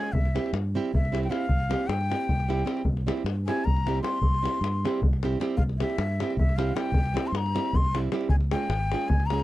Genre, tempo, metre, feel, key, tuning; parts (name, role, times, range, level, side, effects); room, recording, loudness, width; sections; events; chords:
balkan folk, Balkan wedding band; 309 BPM (eighths); 7/8; straight; C phrygian dominant; A4 = 443 Hz
breathy bright ney; melody; 0.0-9.4 s; E5 to C6; -31 LUFS; left 3 dB
nylon-string guitar; accompaniment; 0.0-9.4 s; G3 to Ab4; -29 LUFS; right 4 dB
fingered electric bass; bass; 0.1-9.4 s; Ab1 to G2; -28 LUFS; equal
davul; percussion; 0.1-9.4 s; -28 LUFS; left 1 dB
little or no reverb; dark, warm production; -24 LUFS; side -16 dB against mid
0.0-9.4 A section
ney solo 0.0-9.4
0.1 C; 8.3 Db